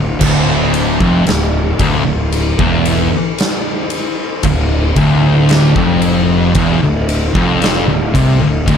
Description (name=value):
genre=stoner and doom metal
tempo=57 BPM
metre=4/4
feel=straight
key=D minor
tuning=A4 = 440 Hz
part: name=fuzz guitar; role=riff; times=0.0-8.8 s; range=D2 to C3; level=-19 LUFS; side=equal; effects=distortion
part: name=thick fuzz guitar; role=riff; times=0.0-8.8 s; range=D2 to C3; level=-17 LUFS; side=left 7 dB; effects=distortion
part: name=thick fuzz guitar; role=riff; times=0.0-8.8 s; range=D2 to C3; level=-17 LUFS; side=right 6 dB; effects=distortion
part: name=fuzz picked electric bass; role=bass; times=0.0-8.8 s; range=D1 to C2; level=-19 LUFS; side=equal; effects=overdrive
part: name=oversized low-tuned drum kit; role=drums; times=0.2-8.8 s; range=crash cymbal, kick drum, ride cymbal, snare drum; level=-16 LUFS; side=left 1 dB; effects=none
room=small room ambience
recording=dark, warm production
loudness=-11 LUFS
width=side -7 dB against mid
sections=0.0-8.8 A section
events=none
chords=0.0 Dm